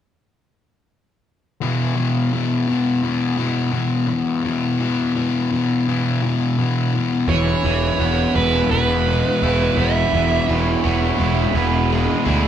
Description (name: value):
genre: rock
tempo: 84 BPM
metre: 4/4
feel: straight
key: E major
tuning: A4 = 440 Hz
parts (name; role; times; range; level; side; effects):
- sludgy distorted guitar; riff; 1.6-12.5 s; E2 to E4; -19 LUFS; left 2 dB; overdrive
- fuzz lead guitar; melody; 7.3-10.4 s; B4 to E5; -21 LUFS; right 4 dB; distortion
- distorted electric guitar; riff; 7.3-12.5 s; E3 to E4; -23 LUFS; right 8 dB; distortion
- fuzz picked electric bass; bass; 7.3-12.5 s; E1 to D2; -20 LUFS; right 1 dB; overdrive
- overdriven semi-hollow guitar; second line; 10.5-12.5 s; E4 to C#5; -25 LUFS; right 3 dB; none
room: wet large studio reverb, RT60 0.7 s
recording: band playing live in one room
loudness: -17 LUFS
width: side -9 dB against mid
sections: 1.6-7.3 A section; 7.3-12.5 B section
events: none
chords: 1.6 E5; 7.3 E